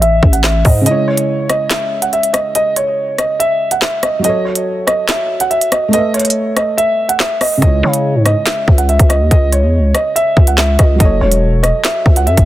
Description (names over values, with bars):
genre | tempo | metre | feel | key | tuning
hip hop, drill | 142 BPM | 4/4 | half-time | C# minor | A4 = 441 Hz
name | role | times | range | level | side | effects
dark concert grand piano | melody | 0.0-12.5 s | C#5 to F#5 | -15 LUFS | right 1 dB | low-pass filter, digital delay
growling 808-style bass | bass | 0.0-0.9, 7.6-12.5 s | E1 to C#3 | -13 LUFS | equal | none
drill drum kit | drums | 0.0-12.5 s | handclaps, hi-hat, kick drum, rim click, snare drum | -13 LUFS | equal | soft clipping on snare
felt-muted upright piano | accompaniment | 0.8-12.5 s | C#3 to E5 | -20 LUFS | right 1 dB | low-pass filter
room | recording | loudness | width
little or no reverb | dense, heavily limited modern master | -11 LUFS | side -14 dB against mid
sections
0.0-12.5 A section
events
break 0.9-7.6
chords
0.0 Amaj7(no3); 0.9 C#m; 4.2 F#m; 5.9 Asus2; 7.6 C#m; 11.0 F#m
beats
0.02 0.44 | 0.86 1.28 1.71 2.13 | 2.55 2.97 3.40 3.82 | 4.24 4.66 5.09 5.51 | 5.93 6.35 6.78 7.20 | 7.62 8.04 8.47 8.89 | 9.31 9.73 10.16 10.58 | 11.00 11.42 11.85 12.27